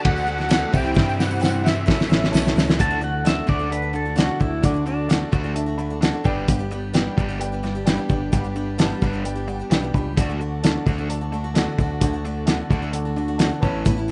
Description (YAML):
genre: folk rock and heartland rock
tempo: 130 BPM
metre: 4/4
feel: straight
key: D major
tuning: A4 = 440 Hz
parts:
  - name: dark upright piano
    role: accompaniment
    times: 0.0-14.1 s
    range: G4 to B5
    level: -34 LUFS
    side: equal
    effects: none
  - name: picked steel-string acoustic guitar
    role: accompaniment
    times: 0.0-14.1 s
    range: G2 to G4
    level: -33 LUFS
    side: equal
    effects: none
  - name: rich studio string section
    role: sustained chords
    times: 0.0-14.1 s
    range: C#4 to E5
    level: -42 LUFS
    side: equal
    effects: none
  - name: crunchy overdriven guitar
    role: riff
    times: 0.0-14.1 s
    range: A2 to F#4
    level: -32 LUFS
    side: equal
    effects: none
  - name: cloth-damped thuddy drum kit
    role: drums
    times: 0.0-14.0 s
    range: hi-hat, kick drum, ride cymbal, snare drum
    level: -22 LUFS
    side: equal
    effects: none
  - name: musette accordion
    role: melody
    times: 0.1-2.3 s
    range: E5 to G5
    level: -29 LUFS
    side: equal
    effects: none
  - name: picked electric bass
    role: bass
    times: 0.1-14.1 s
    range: G1 to G2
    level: -30 LUFS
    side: equal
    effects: none
  - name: tambourine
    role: percussion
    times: 0.2-2.8 s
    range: none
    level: -44 LUFS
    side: equal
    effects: none
  - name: pedal steel guitar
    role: second line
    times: 2.8-5.1 s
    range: D4 to A5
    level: -28 LUFS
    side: equal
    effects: none
room: light reverb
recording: rough home demo mix, nothing above 10.7 kHz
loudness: -21 LUFS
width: mono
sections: 0.0-2.8 A section; 2.8-14.1 B section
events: drum fill 1.0-2.8; upright piano fill 5.6-6.5, 9.2-10.2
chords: 0.0 D; 0.7 C; 1.9 A; 2.8 D; 6.3 G; 10.2 D